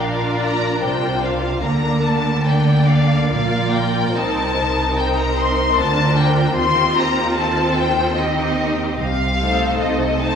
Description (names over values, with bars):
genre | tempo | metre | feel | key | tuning
classical, slow romantic movement for string orchestra | 73 BPM | 3/4 | rubato | Bb major | A4 = 440 Hz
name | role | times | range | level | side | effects
dark studio violin section | melody | 0.0-10.4 s | Eb5 to C6 | -21 LUFS | left 4 dB | none
dark studio violin section | second line | 0.0-10.4 s | G4 to Eb5 | -24 LUFS | equal | none
warm studio viola section | accompaniment | 0.0-10.4 s | A3 to F4 | -23 LUFS | right 1 dB | none
rich studio double bass section | bass | 0.0-10.4 s | Bb1 to Eb2 | -25 LUFS | right 2 dB | none
warm studio cello section | bass | 0.0-10.4 s | Bb2 to Eb3 | -22 LUFS | right 1 dB | none
room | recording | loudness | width
wet recital hall reverb, RT60 1.5 s | recorded in a church or concert hall | -16 LUFS | side -7 dB against mid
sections
0.0-10.4 A section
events
none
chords
0.0 Bb; 1.6 Bb/D; 4.1 Cm7; 6.6 Cm/Eb; 9.0 Adim/C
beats
0.01 0.83 | 1.65 2.47 3.31 | 4.15 4.97 5.78 | 6.58 7.37 8.18 | 9.00 9.82